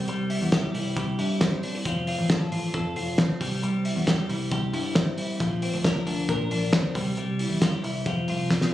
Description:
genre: jangly indie pop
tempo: 135 BPM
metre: 4/4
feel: straight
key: unclear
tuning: A4 = 435 Hz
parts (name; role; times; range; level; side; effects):
- twelve-string electric guitar; arpeggios; 0.0-8.7 s; F3 to Bb4; -27 LUFS; left 1 dB; analog delay
- vintage muted picked electric bass; bass; 0.0-8.7 s; F1 to Bb2; -30 LUFS; equal; none
- cloth-damped thuddy drum kit; drums; 0.1-8.7 s; hi-hat, kick drum, snare drum; -27 LUFS; equal; none
room: light reverb, small room ambience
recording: recorded on a phone in the room, studio reverb, compression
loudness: -23 LUFS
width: side -13 dB against mid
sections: 0.0-8.7 A section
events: drum fill 8.5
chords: 0.0 C; 1.9 F; 3.4 C; 5.4 Bbadd9; 7.0 C; 8.1 F5

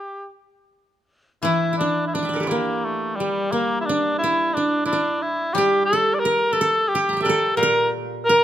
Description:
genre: japanese traditional, Japanese chamber music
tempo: 58 BPM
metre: 4/4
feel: rubato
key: G kumoi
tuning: A4 = 445 Hz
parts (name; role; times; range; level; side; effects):
- warm cor anglais; melody; 0.0-8.4 s; G3 to D5; -20 LUFS; equal; none
- koto; second line; 0.0-8.4 s; G3 to Bb5; -23 LUFS; right 2 dB; none
- koto; accompaniment; 1.4-8.4 s; Bb2 to G3; -29 LUFS; left 4 dB; none
room: light reverb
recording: close, detailed microphones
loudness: -19 LUFS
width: side -11 dB against mid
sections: 0.0-1.4 A section; 1.4-8.4 B section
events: none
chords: none

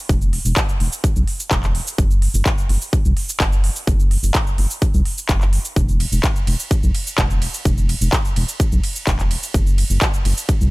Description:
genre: progressive house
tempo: 127 BPM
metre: 4/4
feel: straight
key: unclear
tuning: A4 = 443 Hz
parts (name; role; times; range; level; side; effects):
- round analog bass; bass; 0.1-10.7 s; E1 to C2; -18 LUFS; equal; sidechain pumping
- big-room dance drum kit; drums; 0.1-10.7 s; handclaps, hi-hat, ride cymbal, shaker; -24 LUFS; equal; sidechain pumping on perc, sidechain pumping on hats, sidechain pumping on cymbals
- electronic kick drum; drums; 0.1-10.6 s; none; -18 LUFS; equal; none
room: little or no reverb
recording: none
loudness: -16 LUFS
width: side -22 dB against mid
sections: 0.0-10.7 A section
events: none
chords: none

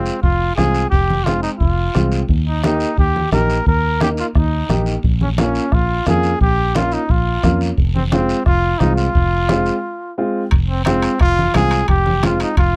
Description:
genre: latin, cumbia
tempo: 175 BPM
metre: 4/4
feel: straight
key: F minor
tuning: A4 = 440 Hz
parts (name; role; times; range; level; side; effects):
- breathy trumpet; melody; 0.0-12.8 s; C4 to Bb4; -22 LUFS; equal; none
- dark upright piano; accompaniment; 0.0-12.5 s; Ab3 to Bb4; -24 LUFS; equal; none
- fingered electric bass; bass; 0.0-12.8 s; F1 to F2; -21 LUFS; equal; none
- guiro; percussion; 0.1-12.8 s; none; -36 LUFS; equal; none
- bombo; percussion; 0.2-12.7 s; none; -20 LUFS; equal; none
- congas; percussion; 0.2-12.8 s; none; -26 LUFS; equal; none
- timbales; percussion; 10.5-12.7 s; none; -30 LUFS; equal; none
room: little or no reverb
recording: dry, close 1970s-style studio recording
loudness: -17 LUFS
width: mono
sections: 0.0-10.5 A section; 10.5-12.8 A section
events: break 9.8-10.5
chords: 0.0 Fm; 2.3 Eb; 5.0 Bbm; 7.8 Fm

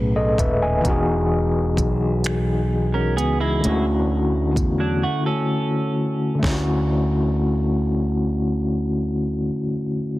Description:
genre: slow six-eight R&B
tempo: 43 BPM (dotted quarters)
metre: 6/8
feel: straight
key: D lydian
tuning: A4 = 438 Hz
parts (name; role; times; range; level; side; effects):
- overdriven tine electric piano; accompaniment; 0.0-10.2 s; A2 to G#5; -21 LUFS; left 1 dB; medium tremolo
- fretless electric bass; bass; 0.0-9.5 s; Eb1 to E2; -23 LUFS; equal; none
- smooth R&B drum kit; drums; 0.4-6.7 s; finger snaps, hi-hat, kick drum, snare drum; -25 LUFS; equal; none
- clean electric guitar; second line; 2.9-6.4 s; F#3 to Bb4; -26 LUFS; right 3 dB; wide subtle chorus
room: light reverb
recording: heavily compressed radio sound, multiband compression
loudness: -19 LUFS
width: side -17 dB against mid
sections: 0.0-6.4 A section; 6.4-9.2 B section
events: silent gap 5.0-6.4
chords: 0.0 Amaj9; 0.8 Emaj9; 3.6 Dmaj9

